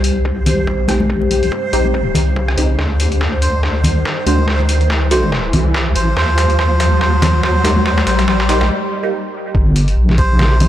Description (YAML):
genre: deep dubstep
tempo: 142 BPM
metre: 4/4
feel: swing 57% on 16ths, half-time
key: unclear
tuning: A4 = 440 Hz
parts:
  - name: dark analog pad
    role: sustained chords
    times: 0.0-10.7 s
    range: F3 to G4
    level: -25 LUFS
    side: left 2 dB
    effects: chorus, phaser
  - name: deep soft wobble bass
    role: bass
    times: 0.0-10.7 s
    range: G1 to Eb2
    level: -15 LUFS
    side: equal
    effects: chorus, tube saturation
  - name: trip hop sampler-style drum kit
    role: drums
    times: 0.0-10.7 s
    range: hi-hat, rim click, snare drum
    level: -21 LUFS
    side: left 1 dB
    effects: high-pass filter on hats, high-pass filter on snare, high-pass filter on room
  - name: riser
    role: sound effects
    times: 0.2-8.7 s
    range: none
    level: -23 LUFS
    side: left 1 dB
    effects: none
  - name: backwards swelling texture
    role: texture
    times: 0.0-8.7 s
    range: C5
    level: -26 LUFS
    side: right 4 dB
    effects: built-in reverb
  - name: electronic kick drum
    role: drums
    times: 0.3-10.3 s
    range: none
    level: -22 LUFS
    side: equal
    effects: high-pass filter on kick, high-pass filter on room
  - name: congas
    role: percussion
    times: 0.5-10.7 s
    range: none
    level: -20 LUFS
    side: left 1 dB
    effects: none
  - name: filtered dub chord stab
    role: stabs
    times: 0.9-9.1 s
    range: A3 to G4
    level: -22 LUFS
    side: right 2 dB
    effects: phaser, lush chorus, dub echo
  - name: melodica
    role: melody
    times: 3.4-10.7 s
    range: C5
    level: -21 LUFS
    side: right 1 dB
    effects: dub echo
room: light reverb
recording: dry, gritty hardware recording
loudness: -12 LUFS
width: side -12 dB against mid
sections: 0.0-9.5 A section; 9.5-10.7 B section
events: build-up 0.0-9.5; riser 0.2-8.7; drum fill 2.8-8.7; break 8.7-9.5; drop 9.5-10.7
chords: 0.0 C5; 2.8 N.C.; 6.2 Eb; 9.5 Gm7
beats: 0.25 0.67 | 1.10 1.52 1.94 2.36 | 2.79 3.21 3.63 4.05 | 4.48 4.90 5.32 5.75 | 6.17 6.59 7.01 7.43 | 7.86 8.28 8.70 9.12 | 9.55 9.97 10.39